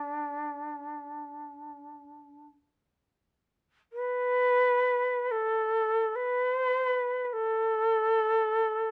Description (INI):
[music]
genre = japanese traditional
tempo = free time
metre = none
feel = none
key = unclear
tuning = A4 = 440 Hz
[part]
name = reedy shakuhachi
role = solo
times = 0.0-8.9 s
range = D4 to B4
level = -29 LUFS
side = equal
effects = none
[sound]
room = light reverb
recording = none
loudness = -28 LUFS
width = mono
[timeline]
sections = 0.0-8.9 A section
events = none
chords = none